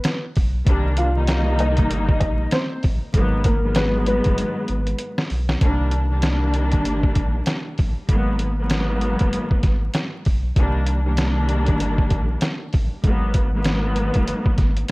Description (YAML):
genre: hip hop, boom-bap hip-hop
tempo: 97 BPM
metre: 4/4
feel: swing 58% on 16ths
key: unclear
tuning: A4 = 439 Hz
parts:
  - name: warm upright piano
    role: melody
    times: 0.0-5.1 s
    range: Bb3 to F5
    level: -26 LUFS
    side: left 1 dB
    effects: high-pass filter, low-pass filter
  - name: trip hop sampler-style drum kit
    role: drums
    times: 0.0-14.9 s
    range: hi-hat, kick drum, snare drum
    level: -20 LUFS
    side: equal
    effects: none
  - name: warm sub bass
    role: bass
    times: 0.4-14.8 s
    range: Gb1 to C2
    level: -22 LUFS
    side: equal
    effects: none
  - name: dark symphonic string section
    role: accompaniment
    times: 0.7-14.9 s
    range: C2 to Eb4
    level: -24 LUFS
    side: equal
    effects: cassette tape, high-pass filter, low-pass filter
room: small room ambience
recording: vinyl crackle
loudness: -18 LUFS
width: side -23 dB against mid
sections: 0.0-5.6 A section; 5.6-14.9 B section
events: break 0.0-0.7; drum fill 4.4-5.6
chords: 0.0 N.C.; 0.7 Cm7; 3.1 Abm7; 5.6 Cm7; 8.1 Abm7; 10.6 Cm7; 13.0 Abm7